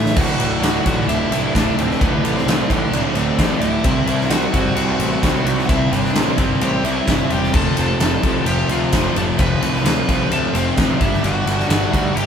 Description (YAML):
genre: quiet-loud alternative rock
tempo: 130 BPM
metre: 4/4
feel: straight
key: unclear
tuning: A4 = 441 Hz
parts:
  - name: fuzz lead guitar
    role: melody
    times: 0.0-12.3 s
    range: B3 to B5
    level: -24 LUFS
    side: left 2 dB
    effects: distortion
  - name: fuzz guitar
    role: riff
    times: 0.0-12.3 s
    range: D2 to C4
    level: -22 LUFS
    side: right 6 dB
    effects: distortion
  - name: overdriven electric guitar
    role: riff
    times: 0.0-12.3 s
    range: D2 to C4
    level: -25 LUFS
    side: left 7 dB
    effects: none
  - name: fuzz picked electric bass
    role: bass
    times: 0.0-12.3 s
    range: D1 to D2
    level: -24 LUFS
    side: equal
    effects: overdrive
  - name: huge arena drum kit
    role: drums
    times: 0.1-12.3 s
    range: crash cymbal, kick drum, ride cymbal, snare drum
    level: -19 LUFS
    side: equal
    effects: none
  - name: high-gain distorted guitar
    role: riff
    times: 0.2-12.3 s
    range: D2 to C4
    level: -26 LUFS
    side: equal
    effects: distortion
room: moderate studio reverb, RT60 0.8 s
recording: band playing live in one room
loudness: -15 LUFS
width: side -7 dB against mid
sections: 0.2-12.3 A section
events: drum fill 0.0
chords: 0.2 D; 3.8 Csus2; 7.5 F; 11.0 G5